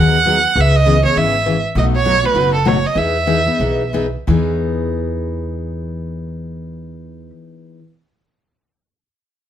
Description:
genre	acoustic string swing (jazz manouche)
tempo	172-202 BPM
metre	4/4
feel	swing 58% on 8ths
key	E major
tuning	A4 = 440 Hz
part	warm violin	melody	0.0-3.9 s	A4 to F#5	-16 LUFS	right 4 dB	plate reverb
part	picked steel-string acoustic guitar	accompaniment	0.0-7.8 s	B2 to G#4	-19 LUFS	left 3 dB	none
part	upright bass	bass	0.0-7.3 s	F#1 to E2	-20 LUFS	right 1 dB	none
room	moderate studio reverb, RT60 0.7 s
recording	none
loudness	-14 LUFS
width	side -10 dB against mid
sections	0.0-4.3 A section; 4.3-7.1 B section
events	slowing down 1.7-4.3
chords	0.0 G#m7; 0.6 C#m7; 1.7 B7; 3.0 Emaj7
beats	0.26 | 0.56 0.86 1.16 1.45 | 1.75 2.05 2.35 2.65 | 2.96 3.28 3.60 3.94 | 4.28 4.63 4.98 5.33 | 5.68 6.03 6.38 6.73

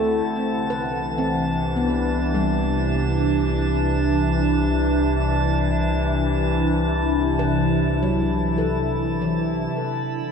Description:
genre	ambient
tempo	76 BPM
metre	3/4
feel	straight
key	unclear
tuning	A4 = 438 Hz
part	warbly tape-like pad	sustained chords	0.0-10.3 s	C3 to F#5	-22 LUFS	equal	chorus, built-in reverb, phaser
part	handpan	arpeggios	0.0-10.3 s	E3 to B4	-28 LUFS	left 2 dB	diffuse ambient delay
part	warm sub bass	bass	0.0-9.7 s	C2 to D2	-26 LUFS	equal	none
part	drifting glass-harmonics texture	texture	0.0-10.3 s	A5 to B5	-30 LUFS	equal	chorus, built-in reverb
room	moderate plate reverb, RT60 3.2 s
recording	dreamy mix soaked in reverb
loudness	-19 LUFS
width	side -6 dB against mid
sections	0.0-9.7 A section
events	fade-in on synth texture 0.0-9.7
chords	0.3 Cmaj7; 9.7 D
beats	| 0.27 1.05 1.84 | 2.63 3.42 4.21 | 5.00 5.79 6.58 | 7.37 8.16 8.95 | 9.74

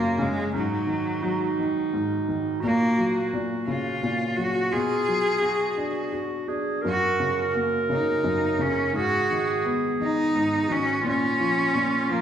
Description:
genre	acoustic folk-pop ballad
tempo	57 BPM (dotted quarters)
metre	6/8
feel	straight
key	F# major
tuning	A4 = 440 Hz
part	bright cello	melody	0.0-12.2 s	F#3 to G#4	-25 LUFS	equal	none
part	warm clarinet	second line	0.0-12.2 s	C#4 to A#4	-28 LUFS	right 4 dB	none
part	felt-muted upright piano	accompaniment	0.0-12.2 s	F#2 to F#4	-28 LUFS	left 2 dB	none
room	wet recital hall reverb, RT60 1.5 s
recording	recorded in a church or concert hall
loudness	-22 LUFS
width	side -9 dB against mid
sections	0.0-12.2 A section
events	none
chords	0.0 F#maj7; 0.5 G#5; 2.6 F#maj7/A#; 4.7 Bm6; 6.8 F#; 8.9 G#m7; 11.1 A#m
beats	| 0.53 1.57 | 2.62 3.67 | 4.72 5.78 | 6.83 7.89 | 8.95 10.00 | 11.05 12.10

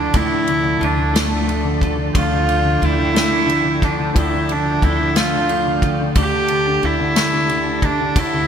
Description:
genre	six-eight pop ballad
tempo	60 BPM (dotted quarters)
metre	6/8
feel	straight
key	D minor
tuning	A4 = 440 Hz
part	warm cello	melody	0.0-8.5 s	A3 to G4	-19 LUFS	right 1 dB	ping-pong delay
part	warm grand piano	accompaniment	0.0-8.5 s	A2 to A3	-24 LUFS	left 4 dB	ensemble chorus
part	mellow tonewheel organ	sustained chords	0.0-8.5 s	F3 to A5	-27 LUFS	equal	chorus vibrato, slow rotary speaker
part	twelve-string electric guitar	arpeggios	0.0-8.5 s	D3 to A4	-26 LUFS	right 6 dB	lush chorus
part	upright bass	bass	0.0-8.5 s	D2	-24 LUFS	equal	none
part	unplugged drum kit	drums	0.1-8.3 s	kick drum, ride cymbal, snare drum	-22 LUFS	equal	gated reverb
room	moderate lush hall reverb, RT60 2.1 s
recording	bright 1980s-style digital production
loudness	-15 LUFS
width	side -8 dB against mid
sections	0.0-8.5 A section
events	none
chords	0.0 Dm; 6.2 Gsus2/D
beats	| 0.15 1.15 | 2.15 3.15 | 4.15 5.15 | 6.16 7.16 | 8.16

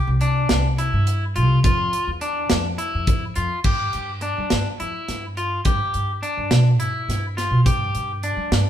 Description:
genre	progressive instrumental, band music in an uneven meter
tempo	209 BPM (eighths)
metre	7/8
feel	straight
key	G mixolydian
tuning	A4 = 440 Hz
part	electric guitar at the edge of break-up	arpeggios	0.0-8.7 s	D4 to G4	-25 LUFS	left 2 dB	none
part	upright bass	bass	0.1-8.6 s	C2 to G3	-21 LUFS	equal	none
part	tight metal drum kit	drums	0.2-8.7 s	crash cymbal, hi-hat, kick drum, snare drum	-23 LUFS	equal	none
room	moderate stone room reverb, RT60 1.1 s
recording	band playing live in one room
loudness	-19 LUFS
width	side -10 dB against mid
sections	0.0-3.7 A section; 3.7-8.7 B section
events	none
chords	0.0 C; 1.6 Dmadd9/E; 3.7 G5; 5.7 G6; 7.7 G5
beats	0.21 0.50 0.79 1.07 1.36 | 1.65 1.93 2.22 2.51 2.79 3.08 3.37 | 3.65 3.94 4.22 4.51 4.80 5.08 5.37 | 5.66 5.94 6.23 6.52 6.80 7.09 7.38 | 7.66 7.95 8.24 8.52

